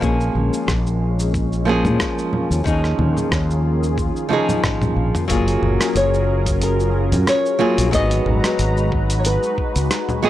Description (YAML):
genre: sunset chillout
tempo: 91 BPM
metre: 4/4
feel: swing 54% on 16ths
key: unclear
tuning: A4 = 439 Hz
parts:
  - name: nylon-string guitar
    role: accompaniment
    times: 0.0-10.3 s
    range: E#3 to G#4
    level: -21 LUFS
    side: equal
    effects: auto-pan, analog delay
  - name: lush unison pad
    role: sustained chords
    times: 0.0-10.3 s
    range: D#3 to A#5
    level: -25 LUFS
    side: equal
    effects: chorus, phaser
  - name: mellow fretless electric bass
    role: bass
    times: 0.0-9.9 s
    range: F#1 to A#2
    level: -20 LUFS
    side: equal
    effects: none
  - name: dusty soul sampler-style drum kit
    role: drums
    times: 0.0-10.2 s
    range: congas, hi-hat, rim click, shaker, toms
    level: -24 LUFS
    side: equal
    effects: small room ambience
  - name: electronic kick drum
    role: drums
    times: 0.0-9.7 s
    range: none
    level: -25 LUFS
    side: equal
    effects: small room ambience
  - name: congas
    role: percussion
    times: 0.4-4.6 s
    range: none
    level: -26 LUFS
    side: right 2 dB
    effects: none
  - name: flamenco guitar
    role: melody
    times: 5.3-10.2 s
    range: G#4 to D#5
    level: -23 LUFS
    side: left 2 dB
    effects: analog delay
room: little or no reverb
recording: dry, gritty hardware recording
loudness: -16 LUFS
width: side -13 dB against mid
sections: 0.0-5.3 A section; 5.3-10.3 B section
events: drum fill 4.3-5.3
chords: 0.0 A#m7; 5.3 F#maj9; 7.9 G#m7